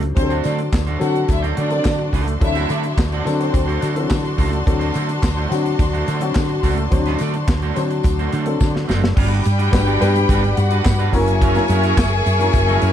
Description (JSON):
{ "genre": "disco", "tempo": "107 BPM", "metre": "4/4", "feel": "straight", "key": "unclear", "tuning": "A4 = 445 Hz", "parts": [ { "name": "dark baby grand piano", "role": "accompaniment", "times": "0.0-12.9 s", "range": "E3 to C5", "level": "-23 LUFS", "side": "left 4 dB", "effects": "none" }, { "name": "electric guitar at the edge of break-up", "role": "accompaniment", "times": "0.0-12.9 s", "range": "F#3 to D5", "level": "-26 LUFS", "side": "right 8 dB", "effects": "none" }, { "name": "woody fretless electric bass", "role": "bass", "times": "0.0-12.9 s", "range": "F#1 to D3", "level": "-20 LUFS", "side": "equal", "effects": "tube saturation" }, { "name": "modern studio drum kit", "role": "drums", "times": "0.0-12.9 s", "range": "crash cymbal, handclaps, hi-hat, kick drum, snare drum", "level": "-20 LUFS", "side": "equal", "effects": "none" }, { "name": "warm symphonic violin section", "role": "second line", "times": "0.2-3.8, 9.2-12.9 s", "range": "C4 to Ab5", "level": "-23 LUFS", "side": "left 1 dB", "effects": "none" }, { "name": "clear studio string section", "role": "sustained chords", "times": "0.2-12.9 s", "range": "G3 to C#6", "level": "-26 LUFS", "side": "left 2 dB", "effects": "none" }, { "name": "tambourine", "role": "percussion", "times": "0.2-12.7 s", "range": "none", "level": "-40 LUFS", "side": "left 8 dB", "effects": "none" } ], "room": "little or no reverb", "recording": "dark, warm production", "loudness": "-16 LUFS", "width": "side -10 dB against mid", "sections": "0.2-9.2 A section; 9.2-12.9 B section", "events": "drum fill 8.6-9.2", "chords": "0.2 D7; 9.2 Gmaj7; 11.1 F#7" }